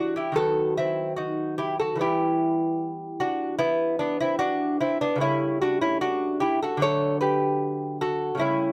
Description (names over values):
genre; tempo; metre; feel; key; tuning
classical, baroque-style dance for lute; 74 BPM; 4/4; rubato; D major from 5.2 s; A4 = 441 Hz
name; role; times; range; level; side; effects
lute; solo; 0.0-8.7 s; C#3 to C#5; -25 LUFS; equal; none
room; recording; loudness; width
moderate studio reverb, RT60 0.6 s; none; -25 LUFS; mono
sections
0.0-8.7 A section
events
none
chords
0.4 B/D#; 2.0 Em; 5.2 A7/C#; 6.8 D